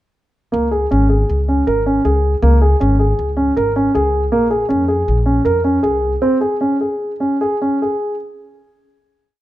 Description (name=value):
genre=contemporary instrumental, chamber music in an uneven meter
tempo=158 BPM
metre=5/4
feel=straight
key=Db major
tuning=A4 = 439 Hz
part: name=dark concert grand piano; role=arpeggios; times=0.5-8.1 s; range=Bb3 to Bb4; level=-15 LUFS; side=right 1 dB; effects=none
part: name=upright bass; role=bass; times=0.5-6.2 s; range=Ab1 to F2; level=-17 LUFS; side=equal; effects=none
room=moderate recital hall reverb, RT60 1.6 s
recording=close, detailed microphones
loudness=-14 LUFS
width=side -15 dB against mid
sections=0.5-8.2 A section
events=slowing down 5.1-8.2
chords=0.5 Db5; 4.3 Bbm9; 6.2 Db5